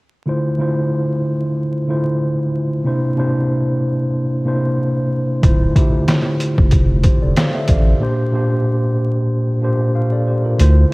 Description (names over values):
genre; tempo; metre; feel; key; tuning
hip hop, boom-bap hip-hop; 93 BPM; 4/4; swing 55% on 16ths; D minor; A4 = 437 Hz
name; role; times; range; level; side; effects
mellow tine electric piano; accompaniment; 0.3-10.9 s; Bb2 to F5; -16 LUFS; equal; medium stereo tremolo, cassette tape
saturated sub bass; bass; 5.4-10.9 s; D1 to D2; -14 LUFS; equal; none
trip hop sampler-style drum kit; drums; 5.4-10.8 s; hi-hat, kick drum, snare drum; -15 LUFS; equal; overdrive, cassette tape
room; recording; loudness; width
little or no reverb; home recording on cassette, vinyl crackle; -15 LUFS; side -24 dB against mid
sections
0.3-10.6 A section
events
break 8.0-10.6; kick muted 10.6-10.9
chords
0.3 Dm7; 2.9 C7; 5.4 Dm7; 8.0 Bb6